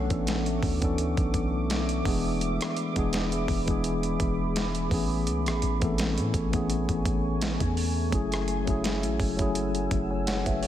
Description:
contemporary R&B; 84 BPM; 4/4; swing 54% on 16ths; A4 = 442 Hz
mellow tine electric piano; accompaniment; 0.0-10.7 s; E3 to G#5; -28 LUFS; left 2 dB; medium stereo tremolo
deep dark ambient pad; sustained chords; 0.0-10.7 s; A3 to E6; -35 LUFS; left 1 dB; chorus, built-in reverb
long sustained 808-style bass; bass; 0.0-10.7 s; E1 to A2; -31 LUFS; right 1 dB
dusty soul sampler-style drum kit; drums; 0.1-10.7 s; hi-hat, kick drum, rim click, snare drum; -30 LUFS; right 1 dB; overdrive
glassy wavetable pluck; texture; 8.8-10.2 s; E4; -42 LUFS; right 6 dB
light reverb, digital ambience; -25 LUFS; side -11 dB against mid
0.0-10.7 A section
0.0 Bm11; 2.1 E7; 4.9 Amaj9; 8.1 F#m9
0.27 0.98 1.70 | 2.41 3.12 3.84 4.55 | 5.27 5.98 6.70 7.41 | 8.12 8.84 9.55 10.27

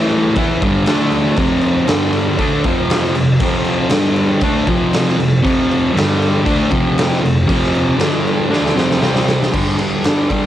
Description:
garage rock duo or trio; 118 BPM; 4/4; straight; A4 = 440 Hz
thick fuzz guitar; riff; 0.0-10.5 s; F2 to E4; -14 LUFS; equal; distortion, cassette tape
raw garage drum kit; drums; 0.1-10.4 s; crash cymbal, kick drum, ride cymbal, snare drum; -18 LUFS; equal; cassette tape
small room reverb; home recording on cassette; -13 LUFS; side -12 dB against mid
0.0-9.5 A section
drum fill 8.5-9.5
0.4 G; 0.9 D5; 1.4 F5; 1.9 G5; 2.4 F5; 3.9 G5; 4.4 F5; 6.0 G5; 6.5 F5; 8.0 G5; 8.5 F5; 9.0 C5; 9.5 G5
0.36 0.87 | 1.38 1.89 2.40 2.91 | 3.42 3.92 4.43 4.94 | 5.45 5.96 6.47 6.98 | 7.49 8.00 8.51 9.02 | 9.53 10.05

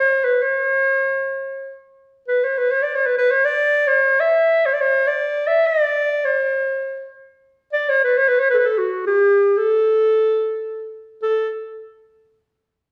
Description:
Arabic maqam ensemble; free time; A4 = 440 Hz
mellow clarinet; solo; 0.0-11.5 s; F#4 to E5; -18 LUFS; equal
wet large studio reverb, RT60 1.3 s; band playing live in one room; -18 LUFS; mono
0.0-11.2 A section; 11.2-12.9 B section
free time

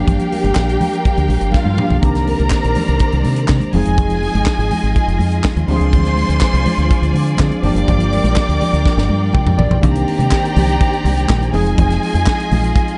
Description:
disco; 123 BPM; 4/4; straight; C minor; A4 = 440 Hz
warm studio string section; second line; 0.0-13.0 s; F4 to D6; -24 LUFS; equal
tine electric piano; accompaniment; 0.0-13.0 s; Eb3 to G5; -23 LUFS; equal
clear studio string section; sustained chords; 0.0-13.0 s; Eb3 to Bb5; -28 LUFS; equal
deep dub fingered electric bass; bass; 0.0-12.7 s; E1 to D3; -19 LUFS; equal
tight funk drum kit; drums; 0.1-13.0 s; handclaps, hi-hat, kick drum, snare drum, toms; -21 LUFS; equal
congas; percussion; 0.1-12.9 s; -26 LUFS; equal
light reverb; dark, warm production, nothing above 10.7 kHz; -15 LUFS; mono
0.0-2.0 A section; 2.0-9.8 B section; 9.8-13.0 C section
drum fill 1.5-2.0, 8.9-9.8; tine electric piano fill 9.1-9.8
0.0 Gm7; 2.0 Cm9; 3.7 Fm7; 5.7 Dm7b5; 7.6 Gm7; 9.8 Cm9; 11.5 Fm7
| 0.07 0.56 1.05 1.54 | 2.03 2.52 3.01 3.50 | 3.98 4.47 4.96 5.45 | 5.93 6.42 6.91 7.39 | 7.88 8.37 8.86 9.34 | 9.83 10.32 10.80 11.29 | 11.78 12.27 12.76

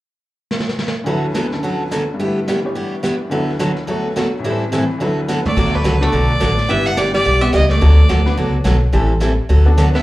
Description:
country, western swing; 214 BPM; 4/4; swing 59% on 8ths; D major; A4 = 440 Hz
vintage brush drum kit; drums; 0.5-10.0 s; brushed snare drum, crash cymbal, hi-hat, kick drum, snare drum, toms; -24 LUFS; equal; slapback echo
bright upright piano; accompaniment; 1.0-10.0 s; D2 to C#5; -23 LUFS; left 2 dB; slapback echo
picked steel-string acoustic guitar; accompaniment; 1.1-9.9 s; A2 to A4; -19 LUFS; right 1 dB
clear fiddle; melody; 5.5-10.0 s; B4 to F#5; -19 LUFS; equal; slapback echo
archtop guitar, miked and amplified; second line; 5.5-10.0 s; F#3 to D4; -22 LUFS; right 2 dB
upright bass; bass; 5.6-9.9 s; G1 to D2; -14 LUFS; equal
light reverb; live gig heard through the venue's PA, club reverb; -14 LUFS; side -17 dB against mid
0.0-1.1 A section; 1.1-5.6 B section; 5.6-10.0 C section
drum fill 0.5-1.1, 5.3
0.0 N.C.; 1.1 D6; 2.2 G6; 3.3 D6; 4.4 Am7; 5.0 D6; 6.7 G6; 7.8 D6; 8.9 Am7; 9.5 D6
0.22 0.51 0.79 | 1.07 1.35 1.63 1.91 | 2.19 2.48 2.76 3.04 | 3.32 3.60 3.88 4.16 | 4.44 4.72 5.00 5.29 | 5.57 5.85 6.13 6.41 | 6.69 6.97 7.25 7.53 | 7.81 8.09 8.37 8.65 | 8.93 9.21 9.49 9.77

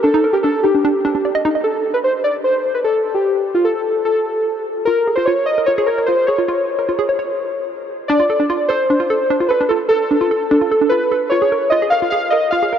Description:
IDM; 149 BPM; 4/4; straight; A4 = 439 Hz
warbly lo-fi synth keys; melody; 0.0-12.8 s; F4 to F5; -16 LUFS; equal; chorus, vintage 12-bit sampler grit, dub echo
warbly dusty pluck; arpeggios; 0.0-1.6, 4.9-12.8 s; D4 to Eb5; -19 LUFS; right 2 dB; chorus, dub echo
moderate huge ambient reverb, RT60 5.9 s; dark, warm production; -14 LUFS; side -8 dB against mid
0.0-1.7 A section; 1.7-8.1 B section; 8.1-12.8 C section
break 7.3-8.1
0.0 Ebmaj7; 1.7 N.C.; 4.9 Bbm7; 8.1 Dm7; 11.3 Bbm7
| 0.04 0.45 0.85 1.25 | 1.65 2.06 2.46 2.86 | 3.26 3.67 4.07 4.47 | 4.87 5.28 5.68 6.08 | 6.49 6.89 7.29 7.69 | 8.10 8.50 8.90 9.30 | 9.71 10.11 10.51 10.91 | 11.32 11.72 12.12 12.53

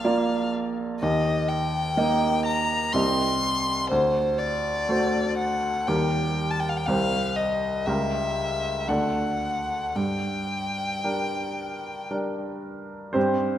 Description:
classical, romantic duo for violin and grand piano; 55-63 BPM; 3/4; rubato; G minor; A4 = 441 Hz
rich violin; melody; 0.0-12.1 s; C5 to C6; -26 LUFS; left 2 dB
bright baby grand piano; accompaniment; 0.0-13.6 s; Bb1 to Eb5; -25 LUFS; right 1 dB
moderate scoring stage reverb, RT60 1.6 s; -23 LUFS; side -11 dB against mid
0.0-13.2 A section
0.0 Bb; 1.0 Eb; 2.9 Cm; 3.9 D7; 5.9 Eb; 6.9 Cm; 7.9 C#dim7; 8.9 D; 10.0 Gm
0.04 | 1.02 1.97 2.94 | 3.90 4.89 5.88 | 6.88 7.87 8.89 | 9.96 11.05 12.11 | 13.16

